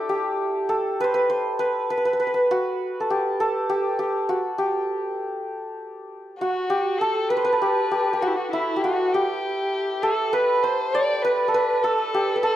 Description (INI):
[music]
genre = Persian modal ensemble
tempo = 66 BPM (dotted quarters)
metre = 6/8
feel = straight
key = G dastgah mahur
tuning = A4 = 439 Hz
[part]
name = santur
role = melody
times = 0.0-12.6 s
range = D4 to D5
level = -21 LUFS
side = equal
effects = none
[part]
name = dark violin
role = second line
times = 6.4-12.6 s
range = E4 to D5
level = -27 LUFS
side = left 2 dB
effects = none
[sound]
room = light reverb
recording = dark, warm production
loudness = -21 LUFS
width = side -12 dB against mid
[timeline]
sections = 0.0-6.4 A section; 6.4-12.6 B section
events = none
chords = none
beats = 0.06 | 0.96 1.87 | 2.78 3.68 | 4.59 5.49 | 6.40 7.30 | 8.21 9.12 | 10.02 10.93 | 11.83